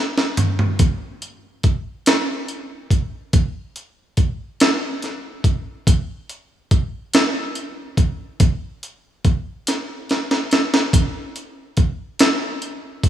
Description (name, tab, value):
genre	gospel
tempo	47 BPM (dotted quarters)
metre	6/8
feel	straight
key	none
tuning	none
part	breakbeat sampler-style drum kit	drums	0.2-13.1 s	hi-hat, kick drum, snare drum, toms	-17 LUFS	equal	none
room	moderate lush hall reverb, RT60 1.9 s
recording	rough home demo mix, small room ambience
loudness	-18 LUFS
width	side -11 dB against mid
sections	0.8-13.1 A section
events	drum fill 0.0-0.8, 9.7-10.9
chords	none